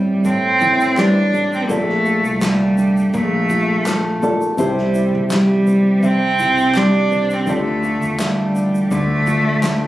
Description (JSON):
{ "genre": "acoustic pop", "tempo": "83 BPM", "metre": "4/4", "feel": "swing 55% on 16ths", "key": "D minor", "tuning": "A4 = 440 Hz", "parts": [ { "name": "rich cello", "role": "melody", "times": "0.0-9.9 s", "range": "G3 to D4", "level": "-17 LUFS", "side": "right 1 dB", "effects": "none" }, { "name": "felt-muted upright piano", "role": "accompaniment", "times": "0.0-9.9 s", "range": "A3 to E5", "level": "-26 LUFS", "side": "left 2 dB", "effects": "none" }, { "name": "nylon-string guitar", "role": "accompaniment", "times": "0.0-9.9 s", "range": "A2 to C5", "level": "-19 LUFS", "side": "left 1 dB", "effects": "none" }, { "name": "upright bass", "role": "bass", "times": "0.0-9.9 s", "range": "G1 to E2", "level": "-27 LUFS", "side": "equal", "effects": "none" }, { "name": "natural country drum kit", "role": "drums", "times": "0.2-9.8 s", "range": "kick drum, shaker, snare drum", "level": "-29 LUFS", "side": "equal", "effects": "none" }, { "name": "group handclap", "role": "percussion", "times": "1.0-9.8 s", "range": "none", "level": "-28 LUFS", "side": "equal", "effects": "none" } ], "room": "light reverb", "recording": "recorded on a phone in the room, studio reverb", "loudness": "-14 LUFS", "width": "side -15 dB against mid", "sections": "0.0-9.9 A section", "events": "none", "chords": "0.0 Am7; 1.7 Bbmaj7; 4.6 C; 7.5 Dm" }